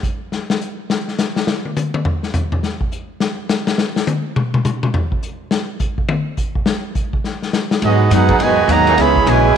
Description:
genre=jazz, big band swing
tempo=208 BPM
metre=4/4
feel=swing 62% on 8ths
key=G# minor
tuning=A4 = 441 Hz
part: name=vintage drum kit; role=drums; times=0.0-9.4 s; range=hi-hat, kick drum, ride cymbal, snare drum, toms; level=-18 LUFS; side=left 2 dB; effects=none
part: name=warm trombone section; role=second line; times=7.8-9.6 s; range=B2 to F#4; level=-16 LUFS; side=right 12 dB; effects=none
part: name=hollow-body jazz guitar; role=accompaniment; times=7.8-9.5 s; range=G#2 to G#4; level=-19 LUFS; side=left 10 dB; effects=none
part: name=upright bass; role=bass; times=7.8-9.5 s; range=A#1 to G#2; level=-16 LUFS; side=right 2 dB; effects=none
part: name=bright trumpet section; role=melody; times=7.9-9.6 s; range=B3 to B5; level=-15 LUFS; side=right 3 dB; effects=none
part: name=brilliant trombone section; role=sustained chords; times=8.3-9.5 s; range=E3 to G#4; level=-23 LUFS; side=equal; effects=none
room=moderate echo chamber reverb, RT60 1.9 s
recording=1960s-style stereo with parts hard left and right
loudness=-15 LUFS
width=side -8 dB against mid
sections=0.0-7.8 A section; 7.8-9.6 B section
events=drum solo 0.0-7.8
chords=0.0 N.C.; 7.8 G#m7; 9.0 C#m7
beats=0.04 0.33 0.61 | 0.90 1.19 1.48 1.77 | 2.06 2.35 2.64 2.92 | 3.21 3.50 3.79 4.08 | 4.37 4.65 4.94 5.23 | 5.52 5.81 6.09 6.38 | 6.67 6.96 7.25 7.54 | 7.83 8.11 8.40 8.69 | 8.98 9.27 9.56

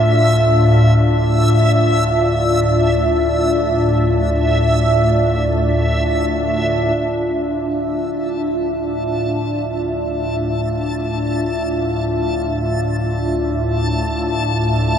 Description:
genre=dark ambient drone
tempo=free time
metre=none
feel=none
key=D minor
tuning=A4 = 440 Hz
part: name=deep dark ambient pad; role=sustained chords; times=0.0-15.0 s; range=D4 to E5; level=-19 LUFS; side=left 1 dB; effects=chorus, built-in reverb
part: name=organ-like drone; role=drone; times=0.0-15.0 s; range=D2 to A2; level=-18 LUFS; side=equal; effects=ensemble chorus, built-in reverb
part: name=backwards swelling texture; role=texture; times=0.0-15.0 s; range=E5 to A5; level=-23 LUFS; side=right 1 dB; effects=built-in reverb
room=wet cathedral reverb, RT60 5.0 s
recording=none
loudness=-15 LUFS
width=side -8 dB against mid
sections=0.0-7.0 A section; 7.0-15.0 B section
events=fade-in on synth drone 7.0-15.0; fade-in on synth texture 7.0-15.0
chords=0.0 Dmadd9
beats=free time

